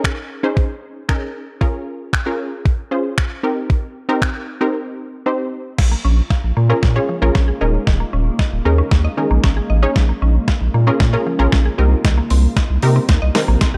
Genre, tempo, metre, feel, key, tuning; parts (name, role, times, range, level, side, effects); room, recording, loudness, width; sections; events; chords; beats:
dance-pop; 115 BPM; 4/4; straight; Bb dorian; A4 = 437 Hz
unison pluck; accompaniment; 0.0-13.7 s; C4 to Db5; -24 LUFS; equal; sidechain pumping
crisp 8-bit digital drum machine; drums; 0.0-13.7 s; crash cymbal, finger snaps, hi-hat, kick drum, snare drum; -20 LUFS; equal; overdrive
shimmering ambient pad; sustained chords; 6.3-13.8 s; C3 to F4; -30 LUFS; equal; chorus, built-in reverb, sidechain pumping
mallet-like synth pluck; arpeggios; 5.8-13.8 s; Eb3 to F5; -29 LUFS; equal; chorus, sidechain pumping, tape echo
saturated sub bass; bass; 5.8-13.8 s; Eb1 to C3; -18 LUFS; equal; sidechain pumping
light reverb; dark, warm production; -17 LUFS; mono
0.0-5.8 A section; 5.8-13.8 B section
break 4.7-5.8; build-up 5.8-13.8; drum fill 5.8-13.8
0.0 Eb7sus4; 1.6 Bbm7; 3.4 Cm7; 5.8 Bbm7; 7.6 Eb7sus4; 10.0 Bbm7; 11.8 Cm7
0.05 0.57 1.09 | 1.61 2.13 2.65 3.18 | 3.70 4.22 4.74 5.26 | 5.79 6.31 6.83 7.35 | 7.87 8.39 8.92 9.44 | 9.96 10.48 11.00 11.52 | 12.05 12.57 13.09 13.61